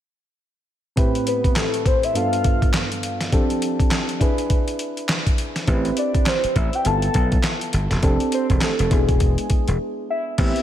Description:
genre	R&B, new jack swing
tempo	102 BPM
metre	4/4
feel	swing 60% on 16ths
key	A minor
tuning	A4 = 440 Hz
part	soft electric-piano-like synth keys	accompaniment	1.0-10.6 s	G2 to B4	-24 LUFS	right 1 dB	chorus
part	dusty soul sampler-style drum kit	drums	1.0-10.6 s	crash cymbal, handclaps, hi-hat, kick drum, snare drum	-20 LUFS	equal	none
part	soft octave-layered synth lead	melody	1.3-10.6 s	G#4 to A5	-24 LUFS	left 1 dB	chorus, phaser, tape echo
part	slap bass	bass	5.7-10.5 s	E1 to B1	-22 LUFS	equal	none
room	moderate plate reverb, RT60 2.2 s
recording	dreamy mix soaked in reverb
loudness	-18 LUFS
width	side -11 dB against mid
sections	1.0-10.4 A section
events	break 9.8-10.4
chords	1.0 Am7; 2.1 G9; 3.3 F6; 4.2 E7; 5.7 Am7; 6.9 G13; 8.0 F6; 8.9 E7

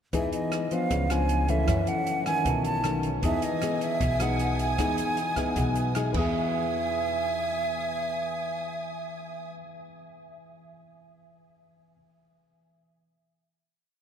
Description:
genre	bossa nova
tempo	155 BPM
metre	4/4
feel	straight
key	E major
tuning	A4 = 442 Hz
part	nylon-string guitar	accompaniment	0.1-9.7 s	F#2 to G#4	-30 LUFS	left 3 dB	none
part	tine electric piano	accompaniment	0.1-12.0 s	D4 to D#6	-38 LUFS	right 3 dB	overdrive, medium stereo tremolo
part	upright bass	bass	0.1-9.5 s	B1 to F#2	-30 LUFS	equal	none
part	open jazz drum kit	drums	0.1-6.2 s	crash cymbal, hi-hat, kick drum, rim click	-34 LUFS	equal	none
part	breathy hollow jazz flute	melody	0.2-9.5 s	D#5 to A5	-30 LUFS	right 3 dB	none
part	warm symphonic string section	sustained chords	3.2-9.5 s	G#5 to D#6	-38 LUFS	right 1 dB	none
room	wet cathedral reverb, RT60 5.5 s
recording	in a vast, echoing space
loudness	-25 LUFS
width	side -8 dB against mid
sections	0.1-6.3 A section; 6.3-9.4 final hit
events	tine electric piano fill 5.2-6.3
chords	0.1 Emaj7; 0.9 C#7b9; 1.7 F#m7; 2.5 B9; 3.2 Emaj7

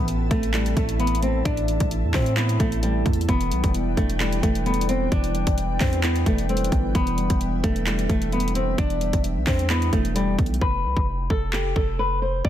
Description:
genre	hip hop, trap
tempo	131 BPM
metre	4/4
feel	half-time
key	E phrygian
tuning	A4 = 442 Hz
part	flamenco guitar	melody	0.0-12.5 s	G3 to D5	-26 LUFS	left 1 dB	low-pass filter, tape echo
part	muted felt-like synth keys	accompaniment	0.0-10.6 s	A2 to E4	-30 LUFS	right 3 dB	chorus, low-pass filter
part	glassy FM pad	sustained chords	0.0-10.6 s	E4 to A5	-32 LUFS	left 1 dB	ensemble chorus, built-in reverb
part	hard-hitting 808-style bass	bass	0.0-12.5 s	E1 to A2	-25 LUFS	equal	none
part	trap drum kit	drums	0.1-12.5 s	handclaps, hi-hat, kick drum	-24 LUFS	equal	overdrive
room	light reverb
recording	dense, heavily limited modern master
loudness	-20 LUFS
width	side -11 dB against mid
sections	0.0-10.6 A section; 10.6-12.5 B section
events	hi-hats muted 10.6-12.5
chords	0.0 Am; 3.3 Em7; 10.6 F

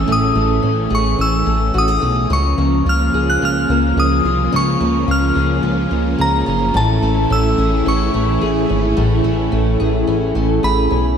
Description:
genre	dream pop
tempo	108 BPM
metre	4/4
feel	straight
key	unclear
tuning	A4 = 440 Hz
part	glassy synth bell	melody	0.0-11.2 s	A5 to Gb6	-20 LUFS	left 2 dB	chorus, tape echo
part	string machine, violas	sustained chords	0.0-11.2 s	E3 to E4	-20 LUFS	right 1 dB	ensemble chorus
part	fingerpicked twelve-string acoustic guitar	arpeggios	0.0-11.2 s	A2 to G#4	-20 LUFS	left 1 dB	wide subtle chorus, tape echo
part	chorused synth bass	bass	0.0-11.2 s	Gb1 to Db2	-18 LUFS	equal	none
room	moderate plate reverb, RT60 2.7 s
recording	dreamy mix soaked in reverb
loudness	-14 LUFS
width	side -7 dB against mid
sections	0.0-11.2 A section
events	none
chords	0.0 Amaj7; 2.3 Db6; 6.7 Amaj7

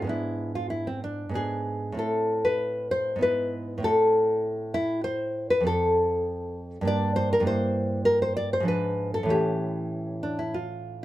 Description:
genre	classical, baroque-style dance for nylon-string guitar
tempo	98 BPM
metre	3/4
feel	rubato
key	A minor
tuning	A4 = 441 Hz
part	nylon-string guitar	solo	0.0-11.0 s	F2 to D5	-24 LUFS	equal	none
room	moderate studio reverb, RT60 0.6 s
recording	faint mains hum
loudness	-24 LUFS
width	side -15 dB against mid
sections	0.0-11.0 A section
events	none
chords	0.1 G#dim; 2.0 Am; 3.2 E/G#; 3.8 Am; 5.7 F; 6.9 Gm; 7.5 Edim/G; 8.7 G#dim7; 9.3 A7

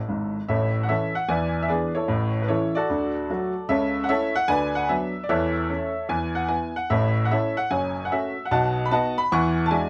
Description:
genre	jazz, stride piano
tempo	150 BPM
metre	4/4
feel	swing 66% on 8ths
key	A major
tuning	A4 = 441 Hz
part	clear baby grand piano	solo	0.0-9.9 s	F#1 to C#6	-24 LUFS	equal	none
room	light reverb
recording	close, detailed microphones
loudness	-24 LUFS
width	mono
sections	0.5-9.9 A section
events	grand piano fill 0.0-0.5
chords	0.5 A; 1.3 E7; 2.1 A; 2.9 D; 3.7 A/C#; 4.5 Bm/D; 5.3 A/E; 6.1 E5; 6.9 A; 7.7 F#m; 8.5 B; 9.3 E9

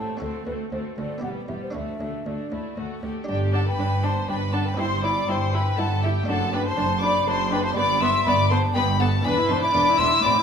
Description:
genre	classical, baroque-style concerto movement with solo episodes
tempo	120 BPM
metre	3/4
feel	straight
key	G major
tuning	A4 = 440 Hz
part	mellow hollow concert flute	melody	0.0-10.4 s	A4 to C6	-26 LUFS	left 1 dB	none
part	rich chamber violin section	melody	0.0-10.4 s	E4 to E6	-29 LUFS	left 4 dB	none
part	rich chamber violin section	second line	0.0-10.3 s	B3 to E5	-29 LUFS	left 3 dB	none
part	buff-stop harpsichord	accompaniment	0.0-10.4 s	D2 to A4	-34 LUFS	left 1 dB	none
part	warm chamber viola section	accompaniment	0.0-10.4 s	G3 to E4	-30 LUFS	right 2 dB	none
part	rich chamber cello section	bass	0.0-10.3 s	D2 to A2	-29 LUFS	right 2 dB	none
part	rich chamber double bass section	bass	0.0-10.3 s	E1 to D2	-29 LUFS	right 2 dB	none
room	wet concert hall reverb, RT60 2.1 s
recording	minimal, uncompressed stereo recording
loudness	-21 LUFS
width	side -7 dB against mid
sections	0.0-3.3 A section; 3.3-10.4 B section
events	none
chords	0.2 D7; 1.2 Em; 1.7 D; 3.3 G5; 4.8 C/G; 6.3 D/F#; 7.8 G; 9.2 E7

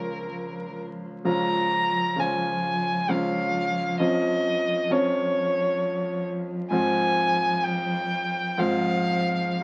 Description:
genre	classical, slow romantic movement for piano trio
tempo	65 BPM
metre	3/4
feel	rubato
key	unclear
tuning	A4 = 444 Hz
part	rich violin	melody	0.0-9.6 s	Bb4 to Bb5	-28 LUFS	equal	none
part	warm cello	second line	0.0-9.6 s	F3	-35 LUFS	equal	none
part	clear concert grand piano	accompaniment	0.0-9.6 s	Db2 to F4	-30 LUFS	equal	none
room	wet studio reverb, RT60 0.8 s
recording	very old 78 rpm record, vinyl crackle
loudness	-25 LUFS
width	mono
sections	0.0-9.6 A section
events	none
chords	0.0 Bbm/Db; 4.0 Db/F; 6.7 Fm/Ab

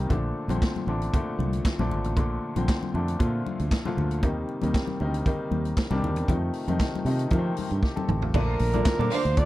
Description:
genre	disco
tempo	116 BPM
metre	4/4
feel	straight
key	unclear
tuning	A4 = 440 Hz
part	clear baby grand piano	accompaniment	0.0-9.5 s	Bb2 to A4	-30 LUFS	left 2 dB	none
part	fingered electric bass	bass	0.0-9.5 s	Ab1 to F3	-27 LUFS	right 1 dB	none
part	vintage drum kit	drums	0.1-9.5 s	crash cymbal, handclaps, hi-hat, kick drum, snare drum, toms	-26 LUFS	right 1 dB	none
part	congas	percussion	0.1-9.2 s	none	-33 LUFS	left 4 dB	none
part	clean electric guitar	accompaniment	8.3-9.4 s	F4 to D5	-34 LUFS	right 12 dB	wah, tremolo
part	warm flugelhorn	melody	8.4-9.5 s	Bb4 to D5	-27 LUFS	right 3 dB	none
part	rich studio violin section	second line	9.1-9.3 s	D4 to F5	-30 LUFS	right 5 dB	none
room	little or no reverb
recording	dry, close 1970s-style studio recording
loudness	-24 LUFS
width	side -16 dB against mid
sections	0.0-8.3 A section; 8.3-9.5 B section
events	drum fill 7.8-8.3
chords	0.1 Bbmaj7; 4.2 Eb6; 6.3 F7; 8.3 Bbmaj7

